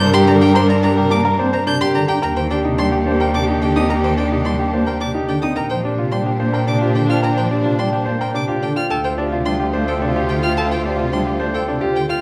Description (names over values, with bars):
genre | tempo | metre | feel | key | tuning
classical, minimalist pattern music | 108 BPM | 3/4 | straight | unclear | A4 = 437 Hz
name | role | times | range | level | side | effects
clear concert grand piano | melody | 0.0-12.2 s | G4 to Bb5 | -26 LUFS | equal | none
pipe organ, strings celeste | accompaniment | 0.0-12.1 s | C3 to D4 | -27 LUFS | equal | none
warm symphonic string section | sustained chords | 0.0-12.0 s | D4 to C5 | -28 LUFS | equal | none
bright baby grand piano | arpeggios | 0.0-12.2 s | D4 to D5 | -24 LUFS | equal | none
rich violin | arpeggios | 0.0-12.2 s | G5 to G6 | -28 LUFS | equal | none
clear cello | bass | 0.0-12.1 s | D2 to Bb2 | -23 LUFS | equal | none
warm soprano saxophone | second line | 0.1-12.0 s | D4 to Bb4 | -28 LUFS | equal | none
room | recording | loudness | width
wet scoring stage reverb, RT60 1.6 s | none | -18 LUFS | mono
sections
0.0-12.2 A section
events
none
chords
0.0 Gm; 2.2 Ebmaj7; 5.6 Bbadd9; 8.9 Dm7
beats
0.01 | 0.56 1.12 1.67 | 2.23 2.78 3.34 | 3.89 4.45 5.00 | 5.56 6.12 6.67 | 7.23 7.78 8.34 | 8.89 9.45 10.01 | 10.56 11.12 11.67